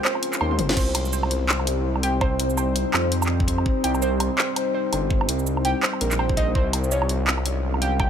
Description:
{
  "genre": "half-time drum and bass",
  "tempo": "166 BPM",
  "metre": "4/4",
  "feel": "swing 58% on 16ths, half-time",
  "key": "C phrygian",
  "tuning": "A4 = 441 Hz",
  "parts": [
    { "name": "deep dark ambient pad", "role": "sustained chords", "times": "0.0-8.1 s", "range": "G3 to F5", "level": "-27 LUFS", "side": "left 2 dB", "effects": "chorus, built-in reverb, sidechain pumping" },
    { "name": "warbly dusty pluck", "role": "arpeggios", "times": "0.0-8.1 s", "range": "Bb4 to C6", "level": "-28 LUFS", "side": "right 3 dB", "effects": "chorus, ping-pong delay" },
    { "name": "drum and bass drum kit", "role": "drums", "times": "0.0-8.1 s", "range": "crash cymbal, handclaps, hi-hat, shaker, snare drum, toms, woodblock", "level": "-25 LUFS", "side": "right 1 dB", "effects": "small room ambience" },
    { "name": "pulsing gated texture", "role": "texture", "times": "0.0-0.8 s", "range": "Bb3 to Bb4", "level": "-43 LUFS", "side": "equal", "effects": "none" },
    { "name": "dark detuned saw bass", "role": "bass", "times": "0.4-8.1 s", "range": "G1 to F2", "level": "-24 LUFS", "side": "equal", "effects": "none" },
    { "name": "electronic kick drum", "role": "drums", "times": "0.8-8.1 s", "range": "none", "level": "-23 LUFS", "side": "equal", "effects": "small room ambience" }
  ],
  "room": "light reverb",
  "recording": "none",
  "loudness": "-20 LUFS",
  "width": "side -8 dB against mid",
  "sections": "0.8-8.1 A section",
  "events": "drum fill 0.5; drop 0.8-8.1",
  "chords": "0.0 Db; 0.8 Cm; 6.6 Db/C"
}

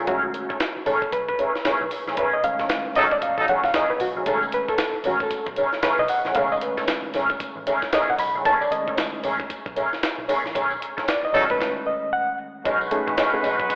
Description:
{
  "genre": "funk",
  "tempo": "115 BPM",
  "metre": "4/4",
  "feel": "swing 60% on 16ths",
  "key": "B mixolydian",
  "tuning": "A4 = 438 Hz",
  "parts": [
    { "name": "mellow electric guitar", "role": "accompaniment", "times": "0.0-13.7 s", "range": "D#3 to A4", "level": "-27 LUFS", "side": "equal", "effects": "wah, spring reverb" },
    { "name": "reed electric piano", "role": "stabs", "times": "0.0-13.7 s", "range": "B2 to B5", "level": "-27 LUFS", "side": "equal", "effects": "fast tremolo" },
    { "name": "vintage muted picked electric bass", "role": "bass", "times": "0.0-13.7 s", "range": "A1 to B1", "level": "-44 LUFS", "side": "equal", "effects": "none" },
    { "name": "breakbeat sampler-style drum kit", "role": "drums", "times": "0.1-13.8 s", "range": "hi-hat, kick drum, snare drum", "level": "-31 LUFS", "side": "equal", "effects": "none" },
    { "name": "warm horn section", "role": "second line", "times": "3.0-3.5, 11.3-13.8 s", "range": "F#3 to B4", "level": "-27 LUFS", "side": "equal", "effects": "none" },
    { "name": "tambourine", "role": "percussion", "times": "4.3-13.8 s", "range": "none", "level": "-46 LUFS", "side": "equal", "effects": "none" }
  ],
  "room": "wet concert hall reverb, RT60 1.9 s",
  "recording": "telephone sound",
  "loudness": "-23 LUFS",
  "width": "mono",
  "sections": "0.0-12.7 A section; 12.7-13.8 B section",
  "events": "reed electric piano solo 0.0-12.7; band accent 2.2-4.3, 10.6-12.7; stop 11.6-12.7",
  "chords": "0.0 B13"
}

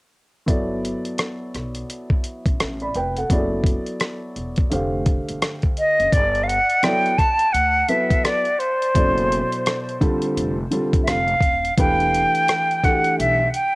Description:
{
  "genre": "hip hop, jazz-hop",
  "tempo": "85 BPM",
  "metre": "4/4",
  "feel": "swing 62% on 16ths",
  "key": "G major",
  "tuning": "A4 = 440 Hz",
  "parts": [
    { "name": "dark grand piano", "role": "accompaniment", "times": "0.5-13.4 s", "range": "B2 to B5", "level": "-24 LUFS", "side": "equal", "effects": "cassette tape, plate reverb" },
    { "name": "upright bass", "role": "bass", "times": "0.5-13.5 s", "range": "Eb1 to D2", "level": "-27 LUFS", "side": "equal", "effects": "none" },
    { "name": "dusty soul sampler-style drum kit", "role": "drums", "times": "0.5-13.7 s", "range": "hi-hat, kick drum, rim click", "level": "-21 LUFS", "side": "equal", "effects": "none" },
    { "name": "silver concert flute", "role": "melody", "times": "5.8-13.8 s", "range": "C5 to A5", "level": "-18 LUFS", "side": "equal", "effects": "cassette tape, tape echo" }
  ],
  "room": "light reverb",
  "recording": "home recording on cassette",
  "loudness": "-18 LUFS",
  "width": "side -23 dB against mid",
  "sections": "0.5-6.1 A section; 6.1-13.8 B section",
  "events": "none",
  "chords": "0.5 Gmaj9; 3.3 E9sus4; 4.7 Fadd9; 6.1 Gmaj9; 9.0 F#m7b5; 10.4 F9; 11.8 Em7"
}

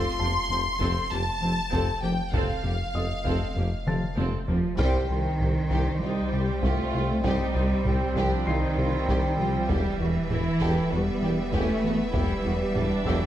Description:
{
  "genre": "cinematic, hybrid orchestral and electronic film score",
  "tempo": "98 BPM",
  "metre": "4/4",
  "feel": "straight",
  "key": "unclear",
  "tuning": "A4 = 440 Hz",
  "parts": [
    { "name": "warm symphonic violin section", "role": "melody", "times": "0.0-13.3 s", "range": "E5 to C6", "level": "-35 LUFS", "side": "left 2 dB", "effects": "none" },
    { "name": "warm symphonic violin section", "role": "second line", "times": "0.0-13.3 s", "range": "F4 to C6", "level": "-35 LUFS", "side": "equal", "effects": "none" },
    { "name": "rich chamber viola section", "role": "accompaniment", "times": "0.0-13.3 s", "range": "G3 to A4", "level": "-34 LUFS", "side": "right 2 dB", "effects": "none" },
    { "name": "round analog bass", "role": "riff", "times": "0.0-13.2 s", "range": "C2 to F3", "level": "-30 LUFS", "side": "left 2 dB", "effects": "none" },
    { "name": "punchy sub bass", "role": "bass", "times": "0.0-13.3 s", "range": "E1 to C2", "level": "-34 LUFS", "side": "equal", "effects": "none" },
    { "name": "dark baby grand piano", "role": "texture", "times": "0.0-13.3 s", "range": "F4 to C7", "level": "-40 LUFS", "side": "left 2 dB", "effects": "tape echo" },
    { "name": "rich symphonic double bass section", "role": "bass", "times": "0.2-13.1 s", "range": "F1 to E2", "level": "-35 LUFS", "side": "right 2 dB", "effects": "none" },
    { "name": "warm symphonic cello section", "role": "bass", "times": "0.2-13.3 s", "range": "F2 to A3", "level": "-30 LUFS", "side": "right 2 dB", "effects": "none" },
    { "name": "warm tuba", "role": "bass", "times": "0.2-13.2 s", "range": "E1 to C2", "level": "-34 LUFS", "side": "right 3 dB", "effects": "none" },
    { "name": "solo taiko drums", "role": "drums", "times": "0.8-13.3 s", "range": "none", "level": "-32 LUFS", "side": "equal", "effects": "none" },
    { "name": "mellow French horn section", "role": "sustained chords", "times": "4.5-13.3 s", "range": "Eb3 to A3", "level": "-34 LUFS", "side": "left 2 dB", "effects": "none" },
    { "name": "clear trombone section", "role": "sustained chords", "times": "4.8-13.3 s", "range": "E3 to C4", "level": "-33 LUFS", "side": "right 2 dB", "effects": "none" }
  ],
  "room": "moderate scoring stage reverb, RT60 1.6 s",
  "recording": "none",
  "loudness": "-23 LUFS",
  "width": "side -12 dB against mid",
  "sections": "0.0-4.8 A section; 4.8-13.3 A section",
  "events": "drum fill 3.9-4.8; band accent 4.8-5.4",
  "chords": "0.0 F; 4.8 Cm; 9.7 Em"
}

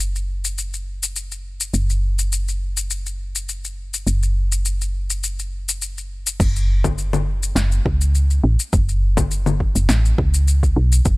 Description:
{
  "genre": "organic downtempo",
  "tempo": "103 BPM",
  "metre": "4/4",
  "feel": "swing 54% on 16ths",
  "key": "F# minor pentatonic",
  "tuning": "A4 = 441 Hz",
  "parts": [
    { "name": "woody FM bass", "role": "bass", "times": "0.0-11.2 s", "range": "F#1 to C#2", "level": "-19 LUFS", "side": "equal", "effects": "sidechain pumping" },
    { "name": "deep house drum kit", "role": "drums", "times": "0.0-11.2 s", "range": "congas, crash cymbal, shaker, snare drum", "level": "-23 LUFS", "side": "left 4 dB", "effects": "overdrive" },
    { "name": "electronic kick drum", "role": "drums", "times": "6.4-11.2 s", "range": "none", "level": "-20 LUFS", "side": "equal", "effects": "overdrive" }
  ],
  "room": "little or no reverb",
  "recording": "none",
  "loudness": "-18 LUFS",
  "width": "side -23 dB against mid",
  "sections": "0.0-6.4 A section; 6.4-11.2 B section",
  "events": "none",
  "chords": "none"
}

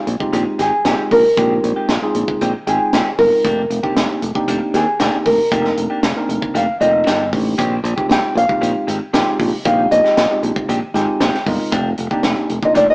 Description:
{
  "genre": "electric jazz fusion",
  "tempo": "116 BPM",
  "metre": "4/4",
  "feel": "straight",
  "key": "unclear",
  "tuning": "A4 = 440 Hz",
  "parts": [
    { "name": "nylon-string guitar", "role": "melody", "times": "0.0-12.9 s", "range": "Ab4 to G5", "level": "-15 LUFS", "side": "equal", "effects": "none" },
    { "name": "tine electric piano", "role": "accompaniment", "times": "0.0-12.9 s", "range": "Ab3 to Ab5", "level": "-21 LUFS", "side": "right 1 dB", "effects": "none" },
    { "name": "modern bright fingered electric bass", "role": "bass", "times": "0.1-12.9 s", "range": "F1 to Eb2", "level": "-21 LUFS", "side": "equal", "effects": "none" },
    { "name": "tight funk drum kit", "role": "drums", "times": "0.1-12.9 s", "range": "hi-hat, kick drum, snare drum", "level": "-21 LUFS", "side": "equal", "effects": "none" },
    { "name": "clean electric guitar", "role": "stabs", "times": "0.2-12.9 s", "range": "Eb3 to G4", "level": "-25 LUFS", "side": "equal", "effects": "none" }
  ],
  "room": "light reverb",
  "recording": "band playing live in one room, small speaker sound",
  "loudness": "-14 LUFS",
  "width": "side -27 dB against mid",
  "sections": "0.0-12.9 A section",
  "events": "nylon-string guitar solo 0.0-12.9; tine electric piano fill 10.7-11.7",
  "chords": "0.0 Bb13sus4; 3.4 F13sus4; 7.6 Bb13sus4; 11.7 F13sus4"
}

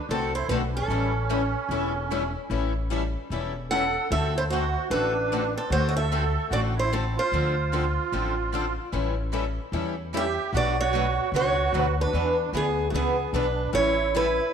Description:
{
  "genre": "acoustic string swing (jazz manouche)",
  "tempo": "150 BPM",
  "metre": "4/4",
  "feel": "swing 62% on 8ths",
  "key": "A mixolydian",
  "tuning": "A4 = 441 Hz",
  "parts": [
    { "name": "picked steel-string acoustic guitar", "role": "melody", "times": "0.0-14.5 s", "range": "F#4 to F#5", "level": "-27 LUFS", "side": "right 1 dB", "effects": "none" },
    { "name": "musette accordion", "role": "second line", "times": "0.0-14.5 s", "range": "A3 to A4", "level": "-29 LUFS", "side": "right 7 dB", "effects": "none" },
    { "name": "picked steel-string acoustic guitar", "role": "accompaniment", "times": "0.1-14.3 s", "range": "B2 to A4", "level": "-32 LUFS", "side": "left 10 dB", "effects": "none" },
    { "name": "picked steel-string acoustic guitar", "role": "accompaniment", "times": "0.1-14.3 s", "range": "B2 to B4", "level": "-35 LUFS", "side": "right 7 dB", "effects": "none" },
    { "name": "upright bass", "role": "bass", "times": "0.1-14.4 s", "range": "E1 to E2", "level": "-28 LUFS", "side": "left 1 dB", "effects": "none" }
  ],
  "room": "wet echo chamber reverb, RT60 1.9 s, studio reverb",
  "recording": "1960s-style stereo with parts hard left and right",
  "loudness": "-23 LUFS",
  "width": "side -7 dB against mid",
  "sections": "0.0-14.5 A section",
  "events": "none",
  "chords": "0.0 D7; 0.9 A7; 4.1 D7; 7.3 Dm7; 8.9 A7; 10.5 Bm7; 12.1 E7; 13.7 A7"
}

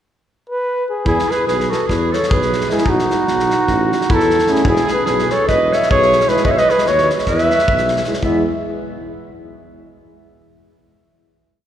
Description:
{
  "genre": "balkan folk, Balkan brass band",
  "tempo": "301 BPM (eighths)",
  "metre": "9/8",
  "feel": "straight",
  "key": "E major",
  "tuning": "A4 = 440 Hz",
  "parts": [
    { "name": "mellow flugelhorn", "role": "melody", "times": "0.5-8.4 s", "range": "F#4 to E5", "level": "-16 LUFS", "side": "equal", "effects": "none" },
    { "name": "clear clarinet", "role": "second line", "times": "1.1-8.4 s", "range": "B3 to C#5", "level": "-20 LUFS", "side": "right 2 dB", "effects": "none" },
    { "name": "mellow tuba", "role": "bass", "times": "1.1-8.4 s", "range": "E1 to E2", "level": "-22 LUFS", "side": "equal", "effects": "none" },
    { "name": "loose indie drum kit", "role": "percussion", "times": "1.1-8.4 s", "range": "kick drum, snare drum", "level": "-22 LUFS", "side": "left 1 dB", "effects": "none" },
    { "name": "mellow French horn", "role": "accompaniment", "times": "2.7-8.4 s", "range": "C#4 to E4", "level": "-27 LUFS", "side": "left 2 dB", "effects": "none" },
    { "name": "warm euphonium", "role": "accompaniment", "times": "2.7-8.4 s", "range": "G#3 to A3", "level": "-29 LUFS", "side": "right 4 dB", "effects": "none" }
  ],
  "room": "wet church reverb, RT60 3.5 s",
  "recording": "recorded in a church or concert hall",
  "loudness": "-13 LUFS",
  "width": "side -10 dB against mid",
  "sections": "0.0-1.1 pickup bar; 1.1-8.2 A section; 8.2-10.0 final chord",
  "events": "none",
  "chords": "0.0 N.C.; 1.1 E; 3.6 A; 4.6 E; 6.4 B; 7.2 E5; 8.2 E"
}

